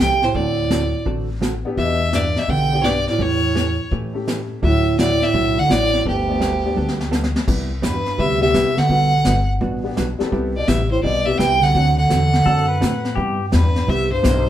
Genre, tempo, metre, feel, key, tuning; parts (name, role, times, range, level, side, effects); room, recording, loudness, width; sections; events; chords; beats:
country, western swing; 168 BPM; 4/4; swing 65% on 8ths; A4 = 440 Hz
clear fiddle; melody; 0.0-14.5 s; G4 to G5; -20 LUFS; equal
mellow bass clarinet; second line; 0.0-14.5 s; D2 to D3; -21 LUFS; right 2 dB
hollow-body jazz guitar; accompaniment; 0.0-14.4 s; B2 to A4; -26 LUFS; right 3 dB
upright bass; bass; 0.0-14.5 s; G1 to A2; -23 LUFS; left 1 dB
vintage brush drum kit; drums; 0.0-14.5 s; brushed snare drum, crash cymbal, hi-hat, kick drum, snare drum; -24 LUFS; left 1 dB
warm upright piano; accompaniment; 1.6-14.5 s; F#3 to A4; -26 LUFS; left 4 dB
pedal steel guitar; second line; 12.5-13.4 s; G4 to B4; -25 LUFS; left 4 dB
moderate studio reverb, RT60 0.6 s; band playing live in one room; -16 LUFS; side -11 dB against mid
0.0-7.5 A section; 7.5-14.5 B section
drum fill 6.8-7.5
0.4 D7; 1.8 Em7; 3.2 A7/E; 4.6 Dadd9; 6.1 Gadd9; 7.5 Cmaj7; 8.9 Gmaj7; 10.3 Cmaj7; 11.7 D7; 13.2 Cmaj7
0.00 | 0.35 0.71 1.06 1.42 | 1.78 2.13 2.49 2.85 | 3.20 3.56 3.92 4.27 | 4.63 4.99 5.34 5.70 | 6.05 6.41 6.77 7.12 | 7.48 7.83 8.19 8.55 | 8.90 9.26 9.62 9.97 | 10.33 10.68 11.04 11.39 | 11.75 12.10 12.46 12.82 | 13.17 13.53 13.88 14.24